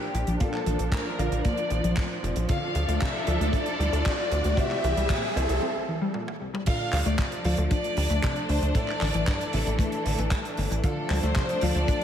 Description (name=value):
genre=italo disco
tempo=115 BPM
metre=4/4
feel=straight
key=D minor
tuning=A4 = 442 Hz
part: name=rich studio violin section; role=melody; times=0.0-12.0 s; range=G4 to F5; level=-31 LUFS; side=left 2 dB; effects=low-pass filter, diffuse ambient delay
part: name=rich studio string section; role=sustained chords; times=0.0-12.0 s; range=E3 to D5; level=-33 LUFS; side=equal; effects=low-pass filter
part: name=clear concert grand piano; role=stabs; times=0.0-12.0 s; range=Bb3 to F5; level=-36 LUFS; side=right 2 dB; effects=wide subtle chorus, diffuse ambient delay
part: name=riser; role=sound effects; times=0.6-5.6 s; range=none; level=-35 LUFS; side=right 2 dB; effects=none
part: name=analog pluck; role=arpeggios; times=0.1-12.0 s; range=C2 to D4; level=-32 LUFS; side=left 2 dB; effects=chorus, diffuse ambient delay
part: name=tight sequencer bass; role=bass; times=0.1-11.9 s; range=F1 to D2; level=-27 LUFS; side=equal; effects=none
part: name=tight funk drum kit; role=drums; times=0.1-12.0 s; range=crash cymbal, handclaps, hi-hat, toms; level=-35 LUFS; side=right 1 dB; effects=high-pass filter on hats, studio ambience, high-pass filter on toms, high-pass filter on cymbals, high-pass filter on snare, high-pass filter on room
part: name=kick drum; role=drums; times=0.4-12.0 s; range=none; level=-26 LUFS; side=equal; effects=studio ambience
room=wet lush hall reverb, RT60 1.6 s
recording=dreamy mix soaked in reverb, vinyl crackle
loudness=-24 LUFS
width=side -9 dB against mid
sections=0.0-6.7 A section; 6.7-12.0 B section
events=filter sweep on synth arpeggio sound 0.0-6.7; riser 0.6-5.6; break 5.6-6.7; drum fill 6.1-6.7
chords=0.0 Bb; 2.5 Dmadd9; 4.6 C; 6.7 Dm; 8.8 Asus4; 10.8 Dm